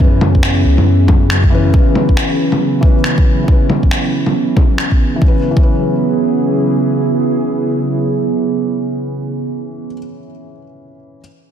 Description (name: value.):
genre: future garage.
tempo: 138 BPM.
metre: 4/4.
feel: swing 61% on 16ths.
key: C# minor.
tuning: A4 = 440 Hz.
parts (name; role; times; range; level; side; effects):
felt-muted upright piano; accompaniment; 0.0-11.2 s; E3 to B4; -20 LUFS; left 4 dB; sidechain pumping, digital delay.
warbly tape-like pad; sustained chords; 0.0-9.5 s; C#3 to G#4; -17 LUFS; right 3 dB; chorus, built-in reverb, sidechain pumping.
warm sub bass; bass; 0.0-1.7 s; C#2 to F#2; -13 LUFS; equal; sidechain pumping.
electronic kick drum; drums; 0.0-5.7 s; none; -12 LUFS; equal; none.
electronic bongos and finger snaps; drums; 0.2-4.9 s; none; -18 LUFS; left 1 dB; soft clipping on snare.
room: light reverb.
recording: dense, heavily limited modern master.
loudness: -11 LUFS.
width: side -9 dB against mid.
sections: 0.0-5.2 A section; 5.2-8.7 B section.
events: none.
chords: 0.0 C#m7.